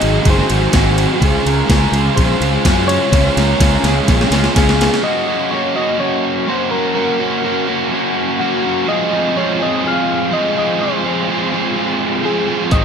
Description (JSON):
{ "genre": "rock, shoegaze and dream pop", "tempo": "125 BPM", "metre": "4/4", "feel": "straight", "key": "Gb lydian", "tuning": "A4 = 440 Hz", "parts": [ { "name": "soft struck synth lead", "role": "melody", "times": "0.0-12.8 s", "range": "Gb4 to F5", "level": "-21 LUFS", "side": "left 1 dB", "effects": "chorus, analog delay" }, { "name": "electric guitar through a small old amp", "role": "arpeggios", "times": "0.0-5.5, 12.7-12.8 s", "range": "F4 to C5", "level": "-25 LUFS", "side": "right 1 dB", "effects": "analog chorus, analog delay" }, { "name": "biting overdriven guitar", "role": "riff", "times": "0.0-12.8 s", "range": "Ab2 to Gb4", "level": "-18 LUFS", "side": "right 8 dB", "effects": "reverse reverb" }, { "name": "overdriven electric guitar", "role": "riff", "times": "0.0-12.8 s", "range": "Ab2 to Ab4", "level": "-20 LUFS", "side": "left 10 dB", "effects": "wide subtle chorus" }, { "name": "fuzz fingered electric bass", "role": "bass", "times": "0.0-4.9, 12.7-12.8 s", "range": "Gb1 to Gb2", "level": "-17 LUFS", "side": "equal", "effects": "overdrive" }, { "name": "gated 80s digital drum machine", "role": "drums", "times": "0.0-5.0, 12.7-12.8 s", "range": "hi-hat, kick drum, ride cymbal, snare drum", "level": "-16 LUFS", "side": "equal", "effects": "gated reverb, gated reverb snare" } ], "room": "moderate huge ambient reverb, RT60 4.0 s", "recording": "dreamy mix soaked in reverb", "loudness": "-13 LUFS", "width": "side -7 dB against mid", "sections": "0.0-5.0 A section; 5.0-12.8 B section", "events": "drum fill 3.1-5.0", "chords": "0.0 Ab7; 1.2 Dbmaj7; 5.0 Gb; 8.9 Fm7" }